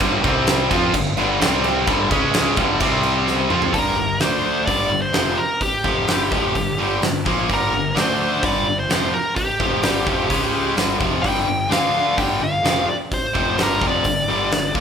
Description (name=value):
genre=hard rock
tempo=128 BPM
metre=4/4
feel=straight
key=G minor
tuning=A4 = 440 Hz
part: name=cranked stack guitar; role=riff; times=0.0-14.8 s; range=F2 to F4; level=-24 LUFS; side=right 6 dB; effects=overdrive
part: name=overdriven electric guitar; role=riff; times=0.0-14.8 s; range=F2 to F4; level=-23 LUFS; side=left 6 dB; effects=none
part: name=tight distorted guitar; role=riff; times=0.0-3.7 s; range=G2 to F4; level=-24 LUFS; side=right 1 dB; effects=distortion
part: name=fuzz picked electric bass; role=bass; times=0.0-14.8 s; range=F1 to F2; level=-28 LUFS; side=equal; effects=overdrive
part: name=huge arena drum kit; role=drums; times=0.0-14.8 s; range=crash cymbal, hi-hat, kick drum, snare drum, toms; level=-23 LUFS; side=equal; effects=none
part: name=nasal lead guitar with a parked wah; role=melody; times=3.7-14.7 s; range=G4 to G5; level=-22 LUFS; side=equal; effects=overdrive
room=moderate large studio reverb, RT60 1.2 s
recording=band playing live in one room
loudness=-17 LUFS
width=side -7 dB against mid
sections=0.0-3.7 A section; 3.7-14.8 B section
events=drum fill 3.3-3.7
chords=0.2 C5; 0.7 G5; 1.4 C5; 1.9 G5; 2.1 C#5; 2.6 G5; 2.8 C5; 3.5 F5; 3.7 Gm; 4.2 D5; 4.7 Gm; 8.0 D5; 8.4 G5; 10.3 C#5; 10.8 G5; 11.7 D5; 12.2 G5